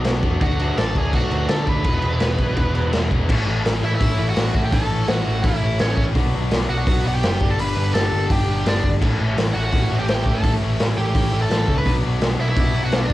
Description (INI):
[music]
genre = punk rock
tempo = 168 BPM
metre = 4/4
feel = straight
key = unclear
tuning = A4 = 440 Hz
[part]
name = overdriven semi-hollow guitar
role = riff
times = 0.0-13.1 s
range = E2 to D4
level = -30 LUFS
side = right 8 dB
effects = cassette tape
[part]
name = raw garage guitar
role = riff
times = 0.0-13.1 s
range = G2 to E4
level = -28 LUFS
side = left 8 dB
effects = overdrive, cassette tape
[part]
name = sludgy distorted guitar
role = riff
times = 0.0-13.1 s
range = E2 to D4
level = -32 LUFS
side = equal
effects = overdrive, cassette tape
[part]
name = overdriven picked electric bass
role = bass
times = 0.0-13.1 s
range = E1 to E2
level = -22 LUFS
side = equal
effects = none
[part]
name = raw garage drum kit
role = drums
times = 0.0-13.1 s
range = crash cymbal, hi-hat, kick drum, snare drum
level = -21 LUFS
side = equal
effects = cassette tape
[part]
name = smooth overdriven lead guitar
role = melody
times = 0.4-13.1 s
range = C#4 to B5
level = -25 LUFS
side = right 1 dB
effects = cassette tape
[sound]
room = little or no reverb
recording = home recording on cassette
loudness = -17 LUFS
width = side -16 dB against mid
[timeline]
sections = 0.0-3.3 A section; 3.3-13.1 B section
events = none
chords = 0.4 D; 1.9 E; 3.3 A; 6.2 Bm; 7.4 G; 9.0 A; 11.9 Bm